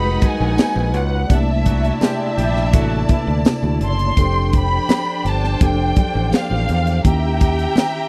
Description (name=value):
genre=lush 1970s-style soul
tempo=84 BPM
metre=4/4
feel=straight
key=unclear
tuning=A4 = 442 Hz
part: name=warm studio violin section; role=melody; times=0.0-8.1 s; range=E5 to C6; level=-26 LUFS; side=equal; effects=none
part: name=warm studio string section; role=second line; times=0.0-8.1 s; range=D4 to A#5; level=-28 LUFS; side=equal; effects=none
part: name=mellow tine electric piano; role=accompaniment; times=0.0-8.1 s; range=C3 to B4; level=-27 LUFS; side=equal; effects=none
part: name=warm horn section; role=stabs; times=0.0-3.4 s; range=D#3 to G4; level=-31 LUFS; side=equal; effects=none
part: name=fingered electric bass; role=bass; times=0.0-7.7 s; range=E#1 to E2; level=-21 LUFS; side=equal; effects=none
part: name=tight funk drum kit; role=drums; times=0.2-7.9 s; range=hi-hat, kick drum, snare drum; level=-18 LUFS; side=equal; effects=none
part: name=congas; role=percussion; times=0.2-7.9 s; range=none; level=-30 LUFS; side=equal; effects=none
part: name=tambourine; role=percussion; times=0.6-7.9 s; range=none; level=-43 LUFS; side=equal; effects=none
room=small room ambience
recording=dry, close 1970s-style studio recording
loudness=-18 LUFS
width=mono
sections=0.0-8.1 A section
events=none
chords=0.0 G#m9; 1.3 C13; 4.2 F69; 7.0 D#7b9